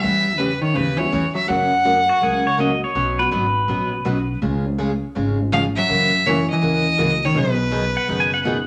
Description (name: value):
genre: country, western swing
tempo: 164 BPM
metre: 4/4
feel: swing 65% on 8ths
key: B major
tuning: A4 = 440 Hz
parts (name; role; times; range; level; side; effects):
- clear fiddle; melody; 0.0-2.6, 5.5-8.5 s; B4 to F#5; -22 LUFS; equal; none
- hollow-body jazz guitar; second line; 0.0-2.6, 5.5-8.5 s; B2 to G3; -26 LUFS; equal; none
- picked steel-string acoustic guitar; accompaniment; 0.0-8.6 s; B2 to G#4; -26 LUFS; equal; none
- upright bass; bass; 0.0-8.7 s; F#1 to F#2; -28 LUFS; equal; none
- honky-tonk upright piano; accompaniment; 1.0-8.7 s; E#3 to F#4; -33 LUFS; equal; none
- pedal steel guitar; second line; 2.1-4.4, 8.0-8.7 s; F#4 to G#5; -24 LUFS; equal; none
room: wet studio reverb, RT60 0.8 s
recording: none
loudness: -19 LUFS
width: mono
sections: 0.0-8.7 A section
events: none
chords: 0.0 Em6; 1.5 F#; 3.0 Bsus2; 4.4 C#; 5.9 F#7; 7.4 B6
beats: | 0.03 0.40 0.76 1.13 | 1.50 1.86 2.23 2.60 | 2.96 3.33 3.69 4.06 | 4.43 4.79 5.16 5.52 | 5.89 6.26 6.62 6.99 | 7.35 7.72 8.09 8.45